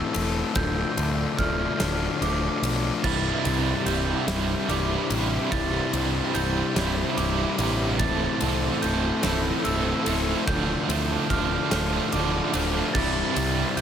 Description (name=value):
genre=post-rock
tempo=48 BPM (dotted quarters)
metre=6/8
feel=straight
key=C major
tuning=A4 = 439 Hz
part: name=dark studio string section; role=sustained chords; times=0.0-13.8 s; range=G4 to D6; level=-39 LUFS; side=equal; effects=none
part: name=glockenspiel with rubber mallets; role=arpeggios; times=0.0-13.8 s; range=D6 to A6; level=-32 LUFS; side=right 6 dB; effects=analog delay
part: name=fuzz guitar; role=riff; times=0.0-13.8 s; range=C2 to A4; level=-27 LUFS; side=left 6 dB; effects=distortion
part: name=huge arena drum kit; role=drums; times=0.1-13.8 s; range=crash cymbal, kick drum, ride cymbal, snare drum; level=-30 LUFS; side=equal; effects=none
part: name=growling picked electric bass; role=bass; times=0.2-13.8 s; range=C1 to D2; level=-29 LUFS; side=right 1 dB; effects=overdrive
part: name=crunchy overdriven guitar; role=riff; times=3.0-13.8 s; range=C2 to A4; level=-28 LUFS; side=right 10 dB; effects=tremolo
room=light reverb, small room ambience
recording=none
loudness=-22 LUFS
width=side -9 dB against mid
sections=0.0-13.8 A section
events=none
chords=0.0 Amadd9; 0.6 Dm; 3.0 C; 8.0 Amadd9/C; 10.5 Dm; 12.9 C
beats=| 0.56 1.80 | 3.04 4.28 | 5.52 6.76 | 8.00 9.23 | 10.47 11.71 | 12.94